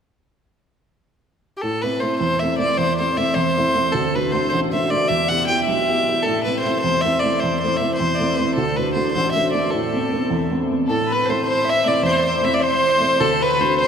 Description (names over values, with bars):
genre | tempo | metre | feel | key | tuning
celtic folk | 104 BPM (dotted quarters) | 6/8 | straight | A dorian | A4 = 442 Hz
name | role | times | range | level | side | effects
rich violin | melody | 1.6-13.9 s | G4 to G5 | -19 LUFS | equal | none
dark upright piano | accompaniment | 1.6-13.9 s | A1 to G4 | -22 LUFS | right 1 dB | none
rich fiddle | second line | 10.9-13.9 s | A4 to E5 | -21 LUFS | equal | none
room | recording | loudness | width
wet cathedral reverb, RT60 6.6 s | recorded in a church or concert hall | -17 LUFS | side -7 dB against mid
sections
0.5-1.6 A section; 1.6-10.9 B section; 10.9-13.9 B section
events
none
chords
0.5 N.C.; 1.6 Am; 3.9 D; 5.1 Em; 6.3 Am; 8.6 D; 9.7 Amadd9; 10.9 Am; 13.2 D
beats
| 0.46 1.04 | 1.62 2.20 | 2.78 3.36 | 3.94 4.52 | 5.10 5.68 | 6.26 6.84 | 7.42 8.00 | 8.58 9.15 | 9.73 10.31 | 10.89 11.47 | 12.05 12.62 | 13.20 13.78